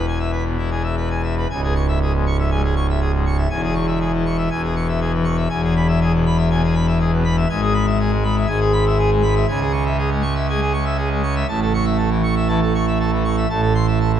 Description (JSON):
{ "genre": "classical, organ toccata", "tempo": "120 BPM", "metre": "4/4", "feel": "straight", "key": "C# minor", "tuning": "A4 = 440 Hz", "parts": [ { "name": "pipe organ, full organ", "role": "solo", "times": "0.0-14.2 s", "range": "C#1 to C#6", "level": "-16 LUFS", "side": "equal", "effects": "none" } ], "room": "wet church reverb, RT60 2.4 s", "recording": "dark, warm production", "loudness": "-17 LUFS", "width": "side -10 dB against mid", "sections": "0.0-1.5 A section; 1.5-14.2 B section", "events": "none", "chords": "0.0 E; 1.5 C#m; 3.5 C#m/E; 5.5 E; 7.5 E/G#; 9.5 C#m; 11.5 A; 13.5 Am" }